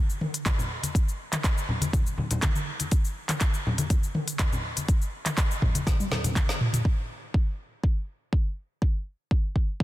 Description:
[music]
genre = house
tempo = 122 BPM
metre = 4/4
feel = straight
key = none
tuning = none
[part]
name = afro-pop drum kit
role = drums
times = 0.1-6.8 s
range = handclaps, hi-hat, shaker, snare drum, toms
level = -29 LUFS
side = equal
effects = low-pass filter on hats, low-pass filter on perc, low-pass filter on toms, low-pass filter on snare, low-pass filter on room
[part]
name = electronic kick drum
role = drums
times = 0.5-9.8 s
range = none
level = -24 LUFS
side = equal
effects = none
[part]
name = congas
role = percussion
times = 0.5-6.8 s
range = none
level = -30 LUFS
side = left 2 dB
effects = none
[sound]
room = little or no reverb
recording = dense, heavily limited modern master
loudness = -24 LUFS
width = side -16 dB against mid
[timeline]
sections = 0.0-6.9 A section; 6.9-9.8 B section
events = drum fill 5.9-6.9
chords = none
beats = 0.46 | 0.95 1.44 1.93 2.42 | 2.92 3.41 3.90 4.39 | 4.88 5.38 5.87 6.36 | 6.85 7.34 7.83 8.33 | 8.82 9.31 9.80

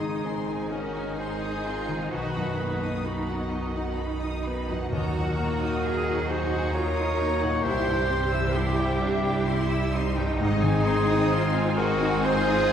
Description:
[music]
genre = cinematic, emotional film score for orchestra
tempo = 65 BPM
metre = 3/4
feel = rubato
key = Ab mixolydian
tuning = A4 = 441 Hz
[part]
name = dark studio violin section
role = melody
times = 0.0-12.7 s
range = Eb4 to Bb4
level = -35 LUFS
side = left 2 dB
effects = none
[part]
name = rich studio violin section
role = second line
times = 0.0-12.7 s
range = Eb5 to E6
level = -36 LUFS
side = left 3 dB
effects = none
[part]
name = warm clarinet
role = second line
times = 0.0-12.7 s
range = F#4 to Db5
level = -30 LUFS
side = equal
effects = none
[part]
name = clear concert grand piano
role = accompaniment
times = 0.0-12.7 s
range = B1 to C5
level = -31 LUFS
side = left 1 dB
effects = none
[part]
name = rich studio viola section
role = accompaniment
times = 0.0-12.7 s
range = Eb3 to G4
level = -32 LUFS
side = right 2 dB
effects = none
[part]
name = concert harp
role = arpeggios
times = 0.0-12.7 s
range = Ab2 to C6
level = -33 LUFS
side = left 3 dB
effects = none
[part]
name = clear symphonic cello section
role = bass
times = 0.0-12.7 s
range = Bb3 to Ab4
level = -33 LUFS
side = right 2 dB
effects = none
[part]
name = rich studio double bass section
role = bass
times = 0.0-12.7 s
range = Ab1 to Eb2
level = -30 LUFS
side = right 2 dB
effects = none
[sound]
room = wet scoring stage reverb, RT60 1.6 s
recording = heard from further back in the room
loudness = -23 LUFS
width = side -8 dB against mid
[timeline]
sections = 0.0-12.7 A section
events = none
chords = 0.0 Ab; 2.1 B; 4.9 Ebm; 7.6 C; 10.4 Ab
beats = 0.26 1.19 | 2.12 3.05 3.97 | 4.90 5.84 6.74 | 7.64 8.55 9.47 | 10.39 11.32 12.25

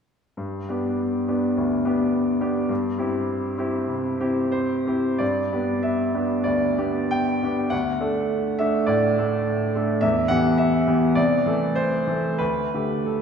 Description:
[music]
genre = classical, romantic character piece for solo piano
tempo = 84-107 BPM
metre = 4/4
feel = rubato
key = G major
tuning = A4 = 438 Hz
[part]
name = clear grand piano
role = solo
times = 0.4-13.2 s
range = C2 to G5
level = -20 LUFS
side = equal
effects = none
[sound]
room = wet concert hall reverb, RT60 2.2 s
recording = minimal, uncompressed stereo recording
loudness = -20 LUFS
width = side -6 dB against mid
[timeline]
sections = 0.4-5.2 A section; 5.2-13.2 B section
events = none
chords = 0.4 G; 2.7 C/G; 5.2 G; 7.7 D; 10.0 Em; 11.2 Am/C; 12.4 Dsus4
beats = | 0.38 0.99 1.57 2.13 | 2.70 3.28 3.89 4.54 | 5.21 5.84 6.44 7.12 | 7.72 8.31 8.89 9.47 | 10.03 10.60 11.17 11.77 | 12.40 13.07

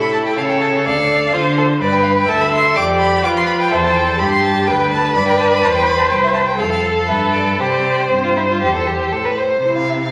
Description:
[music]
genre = quick classical-period movement for string quartet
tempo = 117-127 BPM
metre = 4/4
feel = rubato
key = C major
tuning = A4 = 440 Hz
[part]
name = rich violin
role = melody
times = 0.0-10.1 s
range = C5 to D6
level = -22 LUFS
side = equal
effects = none
[part]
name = warm violin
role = second line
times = 0.0-9.6 s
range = C4 to C5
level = -20 LUFS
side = equal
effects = none
[part]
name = warm viola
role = accompaniment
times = 0.0-10.1 s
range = E4 to E5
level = -21 LUFS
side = equal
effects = none
[part]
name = clear cello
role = bass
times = 0.0-10.1 s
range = C2 to F3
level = -24 LUFS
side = equal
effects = none
[sound]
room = wet recital hall reverb, RT60 1.5 s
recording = vinyl crackle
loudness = -16 LUFS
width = mono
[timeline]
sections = 0.0-9.6 A section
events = none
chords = 0.0 A; 0.9 Dm; 1.8 G; 2.8 G7/F; 3.7 C/E; 4.7 G/D; 5.6 C/E; 6.6 F; 7.1 G; 7.6 C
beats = 0.38 0.86 1.33 | 1.81 2.28 2.76 3.24 | 3.71 4.19 4.67 5.15 | 5.63 6.11 6.59 7.09 | 7.59 8.11 8.62 9.13 | 9.63

